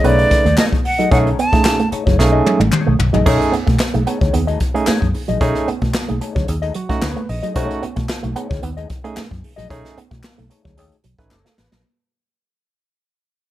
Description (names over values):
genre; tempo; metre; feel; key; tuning
funk; 112 BPM; 4/4; straight; B mixolydian; A4 = 441 Hz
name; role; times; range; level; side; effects
breathy silver concert flute; melody; 0.0-1.9 s; D5 to A5; -18 LUFS; right 1 dB; plate reverb
mellow electric guitar; accompaniment; 0.0-11.9 s; A3 to D#5; -24 LUFS; left 6 dB; wah, plate reverb
electric guitar with an envelope filter; riff; 0.0-11.8 s; F#3 to B3; -24 LUFS; right 6 dB; spring reverb
barky tine electric piano; stabs; 0.0-11.8 s; C#3 to D#5; -21 LUFS; right 4 dB; overdrive, plate reverb
vintage muted fingered electric bass; bass; 0.0-11.8 s; F#1 to B2; -19 LUFS; equal; none
jazz brush drum kit; drums; 0.0-11.8 s; crash cymbal, hi-hat, kick drum, snare drum, toms; -19 LUFS; left 1 dB; none
group handclap; percussion; 0.6-11.4 s; none; -26 LUFS; left 3 dB; none
room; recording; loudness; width
light reverb; none; -14 LUFS; side -14 dB against mid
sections
0.0-3.3 A section; 3.3-11.8 B section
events
drum fill 2.2-3.3, 11.3-11.8; fade-out 3.3-11.8; tine electric piano fill 6.5-7.6, 11.0-11.8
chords
0.0 B13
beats
0.04 0.58 | 1.11 1.65 2.19 2.73 | 3.26 3.80 4.34 4.87 | 5.41 5.95 6.48 7.02 | 7.56 8.09 8.63 9.17 | 9.70 10.24 10.78 11.31